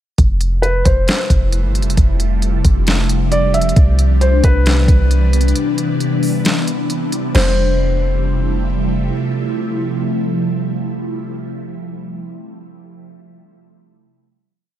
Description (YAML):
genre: hip hop, atmospheric cloud-rap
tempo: 134 BPM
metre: 4/4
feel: half-time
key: F lydian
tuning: A4 = 440 Hz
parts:
  - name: ethereal airy pad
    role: sustained chords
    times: 0.8-11.3 s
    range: C3 to E4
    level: -20 LUFS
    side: equal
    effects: ensemble chorus, built-in reverb, phaser, sidechain pumping
  - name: clean 808-style bass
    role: bass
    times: 0.2-9.1 s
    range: F1 to C2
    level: -14 LUFS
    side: equal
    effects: none
  - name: smooth R&B drum kit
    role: drums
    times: 0.2-7.5 s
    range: crash cymbal, hi-hat, kick drum, snare drum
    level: -16 LUFS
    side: equal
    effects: none
  - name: felt-muted upright piano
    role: melody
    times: 0.6-8.7 s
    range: B4 to E5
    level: -21 LUFS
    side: left 1 dB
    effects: low-pass filter, tape echo
room: little or no reverb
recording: none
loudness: -13 LUFS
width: side -12 dB against mid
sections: 0.2-7.3 verse; 7.3-10.9 final chord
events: break 5.6-7.3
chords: 0.2 Fmaj9; 3.8 Cmaj9; 7.3 Fmaj9